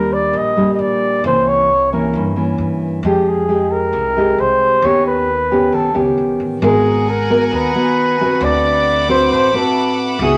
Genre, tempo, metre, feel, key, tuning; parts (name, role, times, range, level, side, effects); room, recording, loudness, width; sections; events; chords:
bossa nova; 134 BPM; 4/4; straight; A4 = 440 Hz
mellow flugelhorn; melody; 0.0-10.4 s; G4 to Eb5; -18 LUFS; equal
nylon-string guitar; accompaniment; 0.0-10.4 s; G2 to B4; -19 LUFS; equal
upright bass; bass; 0.0-10.4 s; G#1 to G2; -28 LUFS; equal
rich chamber string section; sustained chords; 6.6-10.4 s; B3 to D#6; -24 LUFS; equal
moderate studio reverb, RT60 0.6 s; -15 LUFS; mono
0.0-6.6 A section; 6.6-10.4 B section
0.0 Ebmaj7; 1.2 C7b9; 3.0 Fm9; 4.8 Ebaug7; 6.6 G#m9; 8.4 D13